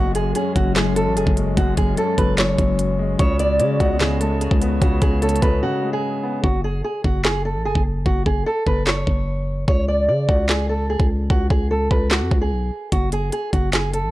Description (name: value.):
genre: hip hop, trap.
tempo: 148 BPM.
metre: 4/4.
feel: half-time.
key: F# minor.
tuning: A4 = 442 Hz.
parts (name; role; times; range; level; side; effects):
fingerpicked old ladder-braced acoustic guitar; melody; 0.0-14.1 s; F#4 to D5; -23 LUFS; right 1 dB; low-pass filter.
dark baby grand piano; accompaniment; 0.0-6.5 s; F#2 to C#4; -24 LUFS; left 2 dB; low-pass filter.
hollow soft pad; sustained chords; 0.0-6.4 s; C#3 to F#4; -30 LUFS; left 2 dB; ensemble chorus.
growling 808-style bass; bass; 0.0-14.1 s; F#1 to C#3; -22 LUFS; equal; none.
trap drum kit; drums; 0.1-14.0 s; handclaps, hi-hat, kick drum, snare drum; -20 LUFS; equal; none.
room: little or no reverb.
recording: dry, gritty hardware recording.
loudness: -17 LUFS.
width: side -16 dB against mid.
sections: 0.0-6.4 A section; 6.4-14.1 B section.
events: break 5.6-6.4; hi-hats muted 6.4-12.9.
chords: 0.0 F#sus2; 3.2 C#7sus4; 6.4 F#5; 9.7 C#5; 12.9 F#5.